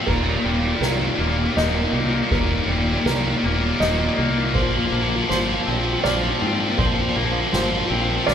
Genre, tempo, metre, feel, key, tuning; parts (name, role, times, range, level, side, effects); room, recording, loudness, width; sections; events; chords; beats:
post-rock; 80 BPM; 3/4; straight; Eb major; A4 = 440 Hz
felt-muted upright piano; arpeggios; 0.0-8.3 s; Bb4 to Eb5; -29 LUFS; right 3 dB
twangy electric guitar; arpeggios; 0.0-8.3 s; Eb2 to F4; -29 LUFS; left 8 dB
biting overdriven guitar; riff; 0.0-8.3 s; Eb2 to F3; -21 LUFS; equal
fingered electric bass; bass; 0.1-8.3 s; Eb1 to Ab2; -25 LUFS; right 1 dB
soft-mallet drum kit; drums; 0.1-8.3 s; crash cymbal, kick drum, ride cymbal, snare drum; -28 LUFS; equal
moderate large studio reverb, RT60 1.5 s; band playing live in one room; -18 LUFS; side -8 dB against mid
0.0-8.3 A section
build-up 0.0-8.3
0.1 Eb; 4.5 Bbadd9
| 0.07 0.82 1.57 | 2.31 3.06 3.80 | 4.55 5.29 6.04 | 6.78 7.53 8.27